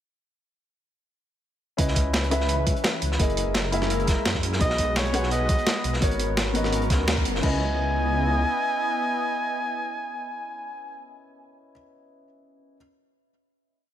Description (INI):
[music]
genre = liquid drum and bass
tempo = 170 BPM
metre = 4/4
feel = straight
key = C# dorian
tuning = A4 = 440 Hz
[part]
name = dark grand piano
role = accompaniment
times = 1.8-12.8 s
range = A#3 to F#5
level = -30 LUFS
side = left 2 dB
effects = tape echo
[part]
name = lush unison pad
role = sustained chords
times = 2.2-11.0 s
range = E3 to D#5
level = -31 LUFS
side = left 1 dB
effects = chorus, sidechain pumping
[part]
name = swelling detuned saw bass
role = bass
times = 1.8-8.4 s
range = F#1 to F#2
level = -27 LUFS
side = equal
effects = none
[part]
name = breakbeat sampler-style drum kit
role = drums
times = 1.8-7.5 s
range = crash cymbal, hi-hat, snare drum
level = -28 LUFS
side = right 1 dB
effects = none
[part]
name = crunchy breakbeat drum kit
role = drums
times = 1.8-7.4 s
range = hi-hat, snare drum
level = -32 LUFS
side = equal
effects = high-pass filter on hats, high-pass filter on snare, high-pass filter on room
[part]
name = electronic kick drum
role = drums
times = 1.8-7.5 s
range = none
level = -25 LUFS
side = equal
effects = overdrive
[part]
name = clear flugelhorn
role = melody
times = 4.6-11.0 s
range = C#5 to G#5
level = -28 LUFS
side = right 1 dB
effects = ping-pong delay
[sound]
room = light reverb, small room ambience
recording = none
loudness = -22 LUFS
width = side -11 dB against mid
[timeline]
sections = 1.8-7.4 drop; 7.4-10.3 final chord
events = drop 1.8-7.4; band accent 7.1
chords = 1.8 C#m9; 3.2 F#13; 4.6 B6; 6.0 G#m11; 7.4 C#m9